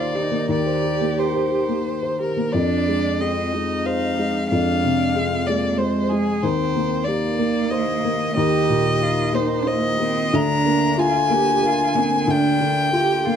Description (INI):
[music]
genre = neoclassical piano and strings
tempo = 92 BPM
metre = 3/4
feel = rubato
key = Eb major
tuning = A4 = 438 Hz
[part]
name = rich violin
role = melody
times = 0.0-13.4 s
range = Ab4 to Bb5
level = -23 LUFS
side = left 2 dB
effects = none
[part]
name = rich cello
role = second line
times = 0.0-13.4 s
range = Ab3 to G4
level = -25 LUFS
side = right 8 dB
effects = none
[part]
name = felt-muted upright piano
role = accompaniment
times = 0.0-13.4 s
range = D2 to C5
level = -21 LUFS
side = left 2 dB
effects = none
[sound]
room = moderate studio reverb, RT60 0.7 s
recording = dark, warm production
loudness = -18 LUFS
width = side -8 dB against mid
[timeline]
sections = 0.0-2.5 A section; 2.5-13.4 B section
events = none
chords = 0.0 Eb6; 2.5 Fm7; 6.4 Eb6; 10.3 Bb/D